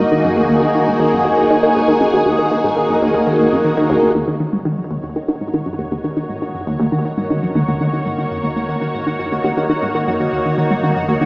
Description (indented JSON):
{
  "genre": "ambient, sequencer-driven space music",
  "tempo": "119 BPM",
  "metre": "4/4",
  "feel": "straight",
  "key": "Eb minor",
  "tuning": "A4 = 440 Hz",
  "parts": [
    { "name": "string machine, full ensemble", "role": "sustained chords", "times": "0.0-11.3 s", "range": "Bb3 to Eb5", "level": "-16 LUFS", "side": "equal", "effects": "ensemble chorus" },
    { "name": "resonant blip pluck", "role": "riff", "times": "0.0-11.3 s", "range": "Eb2 to Eb3", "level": "-18 LUFS", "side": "equal", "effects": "phaser, tape echo" },
    { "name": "round analog bass", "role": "bass", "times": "0.0-11.3 s", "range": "Eb1", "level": "-40 LUFS", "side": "equal", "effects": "none" },
    { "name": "pulsing gated texture", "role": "texture", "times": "4.1-11.3 s", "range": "Gb4 to Gb5", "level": "-27 LUFS", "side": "equal", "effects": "chorus, built-in reverb" }
  ],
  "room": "wet echo chamber reverb, RT60 2.2 s",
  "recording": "echo-heavy mix, small speaker sound",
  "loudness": "-14 LUFS",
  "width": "side -26 dB against mid",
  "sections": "0.0-4.1 A section; 4.1-11.3 B section",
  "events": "fade-in on string machine 4.1-11.3; fade-in on synth texture 4.1-11.3",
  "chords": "0.0 Ebm; 4.1 Ebm7"
}